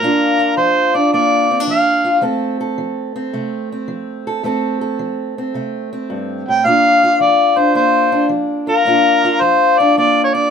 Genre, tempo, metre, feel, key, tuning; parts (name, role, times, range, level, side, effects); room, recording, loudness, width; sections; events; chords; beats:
acoustic country blues, solo or duo; 109 BPM; 4/4; swing 67% on 8ths; A4 = 439 Hz
mellow harmonica; melody; 0.0-2.2, 6.5-10.5 s; Bb4 to G5; -14 LUFS; right 3 dB
fingerpicked steel-string acoustic guitar; accompaniment; 0.0-10.5 s; F2 to A4; -16 LUFS; left 3 dB
moderate small room reverb, RT60 0.5 s; minimal, uncompressed stereo recording; -13 LUFS; side -7 dB against mid
0.0-10.5 A section
0.0 Bb; 2.2 F; 6.7 Bb
| 0.03 0.58 1.14 1.69 | 2.24 2.79 3.35 3.90 | 4.45 5.00 5.56 6.11 | 6.66 7.21 7.76 8.32 | 8.87 9.42 9.97